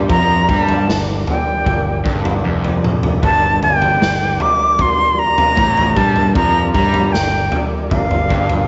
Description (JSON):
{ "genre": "psychedelic rock", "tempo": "77 BPM", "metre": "4/4", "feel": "straight", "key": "G minor", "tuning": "A4 = 440 Hz", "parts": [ { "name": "tonewheel organ", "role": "sustained chords", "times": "0.0-8.7 s", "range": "G3 to D5", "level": "-29 LUFS", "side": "equal", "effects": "slow rotary speaker, overdrive, chorus vibrato" }, { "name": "crunchy overdriven guitar", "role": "riff", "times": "0.0-8.7 s", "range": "F2 to G3", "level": "-24 LUFS", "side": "equal", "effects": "harmonic tremolo" }, { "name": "growling picked electric bass", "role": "bass", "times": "0.0-8.7 s", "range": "F1 to G2", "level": "-22 LUFS", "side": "equal", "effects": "overdrive" }, { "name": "jazz flute", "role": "melody", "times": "0.1-8.7 s", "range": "F5 to D6", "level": "-18 LUFS", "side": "equal", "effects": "slapback echo" }, { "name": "raw garage drum kit", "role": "drums", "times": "0.1-8.7 s", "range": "kick drum, snare drum, toms", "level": "-21 LUFS", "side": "equal", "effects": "none" } ], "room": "light reverb, studio reverb", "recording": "nothing above 7.7 kHz", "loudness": "-15 LUFS", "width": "mono", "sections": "0.0-8.7 A section", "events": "none", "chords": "0.0 Gm" }